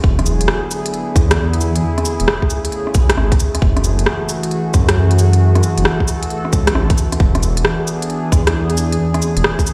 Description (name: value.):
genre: future garage.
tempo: 134 BPM.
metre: 4/4.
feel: swing 66% on 16ths.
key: F# minor.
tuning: A4 = 438 Hz.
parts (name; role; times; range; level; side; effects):
warbly tape-like pad; sustained chords; 0.0-9.7 s; C#3 to A4; -23 LUFS; equal; chorus, built-in reverb, sidechain pumping.
dark detuned saw bass; bass; 0.0-9.4 s; E1 to F#2; -18 LUFS; equal; sidechain pumping.
electronic kick drum; drums; 0.0-9.6 s; none; -16 LUFS; equal; none.
organic electronic drum kit; drums; 0.2-9.7 s; cabasa, hi-hat, rim click; -22 LUFS; equal; none.
room: light reverb.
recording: played on a big sound system in a bare room, large studio reverb.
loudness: -16 LUFS.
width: mono.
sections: 0.0-9.7 A section.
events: none.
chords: 0.0 E7; 1.8 Amaj7/E; 3.6 F#m9; 7.2 E7; 9.0 Amaj7/E.